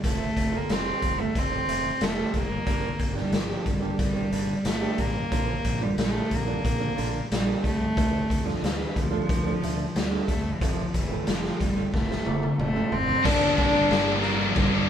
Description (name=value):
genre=quiet-loud alternative rock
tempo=91 BPM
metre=4/4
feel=straight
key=G minor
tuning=A4 = 440 Hz
part: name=clear cello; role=melody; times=0.0-14.9 s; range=E3 to D4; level=-27 LUFS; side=equal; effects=none
part: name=fingerpicked old ladder-braced acoustic guitar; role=arpeggios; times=0.0-13.0 s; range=D3 to G4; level=-34 LUFS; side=right 9 dB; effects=none
part: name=fuzz fingered electric bass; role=bass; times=0.0-14.9 s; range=F1 to D2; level=-33 LUFS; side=equal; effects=overdrive
part: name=raw garage drum kit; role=drums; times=0.0-14.7 s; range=crash cymbal, hi-hat, kick drum, snare drum, toms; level=-27 LUFS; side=left 1 dB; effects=none
part: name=heavy high-gain guitar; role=riff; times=13.2-14.9 s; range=G2 to D4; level=-30 LUFS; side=equal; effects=distortion
part: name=high-gain distorted guitar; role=riff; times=13.2-14.9 s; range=G2 to D4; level=-29 LUFS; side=left 8 dB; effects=distortion
part: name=thick fuzz guitar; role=riff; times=13.2-14.9 s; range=G2 to D4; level=-30 LUFS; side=right 5 dB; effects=distortion
room=moderate studio reverb, RT60 0.8 s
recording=band playing live in one room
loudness=-23 LUFS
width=side -9 dB against mid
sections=0.0-13.2 A section; 13.2-14.9 B section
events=drum fill 11.9-13.2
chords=0.0 F; 2.7 Gm; 5.3 Bb; 8.0 Dm; 10.6 F; 13.2 Gm